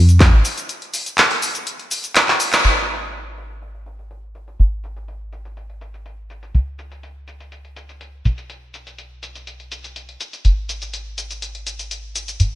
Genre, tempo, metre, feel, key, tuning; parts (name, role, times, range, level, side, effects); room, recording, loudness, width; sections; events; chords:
piano house; 123 BPM; 4/4; straight; A4 = 441 Hz
plucky analog bass; bass; 0.0-12.6 s; Ab1 to F2; -18 LUFS; equal; sidechain pumping
punchy analog drum machine; drums; 0.1-12.5 s; handclaps, hi-hat, shaker; -18 LUFS; equal; low-pass filter on hats, low-pass filter on perc, low-pass filter on snare, low-pass filter on room
moderate lush hall reverb, RT60 1.7 s; dreamy mix soaked in reverb; -17 LUFS; side -14 dB against mid
0.0-2.6 A section; 2.6-12.6 B section
break 0.7-2.6; drum fill 2.3-2.6; band accent 2.5; filter sweep on drum 2.6-12.6